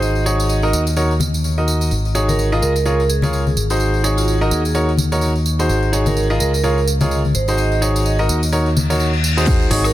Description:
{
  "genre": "piano house",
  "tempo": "127 BPM",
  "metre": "4/4",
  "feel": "swing 58% on 16ths",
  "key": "Ab mixolydian",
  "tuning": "A4 = 441 Hz",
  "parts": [
    { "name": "vibraphone with medium hard mallets", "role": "melody", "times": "0.0-9.9 s", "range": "F4 to Eb5", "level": "-24 LUFS", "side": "right 4 dB", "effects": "vintage 12-bit sampler grit, ping-pong delay" },
    { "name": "clear concert grand piano", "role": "riff", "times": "0.0-9.9 s", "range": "Eb4 to Eb5", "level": "-20 LUFS", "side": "equal", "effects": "sidechain pumping, ping-pong delay" },
    { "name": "modern bright fingered electric bass", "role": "bass", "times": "0.0-9.9 s", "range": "Ab1 to Eb2", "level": "-18 LUFS", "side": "equal", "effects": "sidechain pumping, low-pass filter" },
    { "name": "house drum kit", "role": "drums", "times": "0.0-9.9 s", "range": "crash cymbal, hi-hat, tambourine, woodblock", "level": "-27 LUFS", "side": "right 3 dB", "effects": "none" },
    { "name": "tambourine and congas", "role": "percussion", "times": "0.0-9.9 s", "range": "none", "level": "-25 LUFS", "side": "left 3 dB", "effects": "none" },
    { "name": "reverse cymbal and sub drop", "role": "sound effects", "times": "8.7-9.9 s", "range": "none", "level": "-24 LUFS", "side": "left 2 dB", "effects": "none" },
    { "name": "electronic kick drum", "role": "drums", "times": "9.5-9.6 s", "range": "none", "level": "-16 LUFS", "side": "equal", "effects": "none" },
    { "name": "tambourine", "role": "drums", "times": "9.5-9.8 s", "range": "none", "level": "-37 LUFS", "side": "equal", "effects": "none" }
  ],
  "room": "small room reverb",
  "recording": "none",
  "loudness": "-15 LUFS",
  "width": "side -14 dB against mid",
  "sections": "0.0-9.5 A section",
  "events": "reverse cymbal 8.7-9.5; impact 9.5-9.9",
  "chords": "0.0 Ab7sus4; 0.7 Ebm7; 1.9 Ab7sus4; 2.6 Db6; 3.6 Ab7sus4; 4.5 Ebm7; 5.7 Ab7sus4; 6.4 Db6; 7.3 Ab7sus4; 8.3 Ebm7"
}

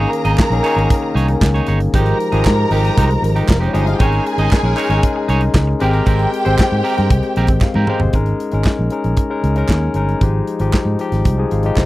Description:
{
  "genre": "disco",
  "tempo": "116 BPM",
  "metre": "4/4",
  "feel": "straight",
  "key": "unclear",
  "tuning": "A4 = 439 Hz",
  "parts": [
    { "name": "warm studio string section", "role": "second line", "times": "0.0-7.8 s", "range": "Bb3 to Bb5", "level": "-22 LUFS", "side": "right 2 dB", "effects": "none" },
    { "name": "barky tine electric piano", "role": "accompaniment", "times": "0.0-11.9 s", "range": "Eb3 to G5", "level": "-20 LUFS", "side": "left 4 dB", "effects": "none" },
    { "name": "clean electric guitar", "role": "accompaniment", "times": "0.0-8.1 s", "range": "Ab3 to Eb5", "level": "-22 LUFS", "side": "right 4 dB", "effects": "none" },
    { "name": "fingered electric bass", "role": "bass", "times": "0.0-11.9 s", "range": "F1 to Ab2", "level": "-16 LUFS", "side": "equal", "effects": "none" },
    { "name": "modern studio drum kit", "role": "drums", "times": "0.1-11.9 s", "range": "handclaps, hi-hat, kick drum, snare drum, toms", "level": "-15 LUFS", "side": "equal", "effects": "none" },
    { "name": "group handclap", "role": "percussion", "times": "0.4-11.9 s", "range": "none", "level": "-29 LUFS", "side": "right 7 dB", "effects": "none" }
  ],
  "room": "little or no reverb",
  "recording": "dry, close 1970s-style studio recording",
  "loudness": "-13 LUFS",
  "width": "side -17 dB against mid",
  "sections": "0.0-8.1 A section; 8.1-11.9 B section",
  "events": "tine electric piano fill 7.1-8.1, 11.3-11.9; drum fill 7.6-8.1",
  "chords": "0.0 Eb7sus4/Ab; 1.9 Fm9/Ab; 4.0 Eb7sus4/Ab; 5.8 Abmaj9; 8.1 Eb7sus4/Ab; 10.2 Fm9/Ab"
}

